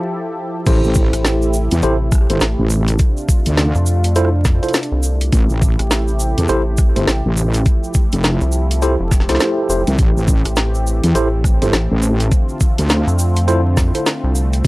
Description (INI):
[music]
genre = glitch hop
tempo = 103 BPM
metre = 4/4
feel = swing 61% on 16ths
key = A minor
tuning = A4 = 442 Hz
[part]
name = warm analog pad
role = sustained chords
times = 0.0-14.7 s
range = C3 to A4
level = -24 LUFS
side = equal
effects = chorus, vintage 12-bit sampler grit, sidechain pumping
[part]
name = mellow tine electric piano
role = stabs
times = 0.7-14.1 s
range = E4 to C5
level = -20 LUFS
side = equal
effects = medium stereo tremolo, sidechain pumping, analog delay
[part]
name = wobble bass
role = bass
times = 0.7-14.7 s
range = F1 to E2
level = -16 LUFS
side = equal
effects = chorus
[part]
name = drum and bass drum kit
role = drums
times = 0.7-14.7 s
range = crash cymbal, hi-hat, rim click, snare drum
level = -20 LUFS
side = equal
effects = overdrive
[part]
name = electronic kick drum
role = drums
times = 0.7-14.7 s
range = none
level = -14 LUFS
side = equal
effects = overdrive
[part]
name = cabasa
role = percussion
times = 0.7-14.7 s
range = none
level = -29 LUFS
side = right 2 dB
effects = none
[part]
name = rubbery square bass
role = bass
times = 1.1-14.6 s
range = F1 to F2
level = -17 LUFS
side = equal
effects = none
[sound]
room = little or no reverb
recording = dry, gritty hardware recording, vinyl crackle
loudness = -13 LUFS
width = side -20 dB against mid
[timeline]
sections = 0.7-14.7 A section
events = break 0.0-0.7; drop 0.7-14.7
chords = 0.0 Fmaj9; 0.7 Am7; 3.0 Dm7; 5.3 Am7; 7.7 Fmaj9; 10.0 Am7; 12.3 Dm7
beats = 0.08 | 0.67 1.25 1.83 2.41 | 3.00 3.58 4.16 4.74 | 5.33 5.91 6.49 7.07 | 7.66 8.24 8.82 9.40 | 9.99 10.57 11.15 11.73 | 12.32 12.90 13.48 14.06 | 14.65